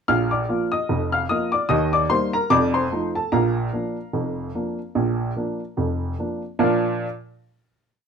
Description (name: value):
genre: ragtime piano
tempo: 74 BPM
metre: 2/4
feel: swing 56% on 16ths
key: Bb major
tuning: A4 = 440 Hz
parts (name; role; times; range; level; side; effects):
- warm upright piano; solo; 0.1-7.1 s; F1 to F6; -20 LUFS; equal; none
room: moderate studio reverb, RT60 0.6 s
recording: dark, warm production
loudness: -20 LUFS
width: side -6 dB against mid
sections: 0.1-6.6 A section; 6.6-8.1 final chord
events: none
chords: 0.1 Bb; 1.7 Eb; 2.5 F7; 3.3 Bb